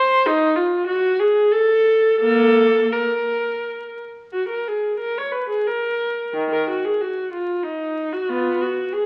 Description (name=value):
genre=classical, baroque-style suite movement for unaccompanied viola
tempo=83-97 BPM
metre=3/4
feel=rubato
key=unclear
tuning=A4 = 442 Hz
part: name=warm viola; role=solo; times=0.0-9.1 s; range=Eb3 to Db5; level=-20 LUFS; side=equal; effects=none
room=moderate large studio reverb, RT60 1.2 s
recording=very old 78 rpm record, vinyl crackle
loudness=-20 LUFS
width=mono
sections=0.0-4.3 A section; 4.3-9.1 A section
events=none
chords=none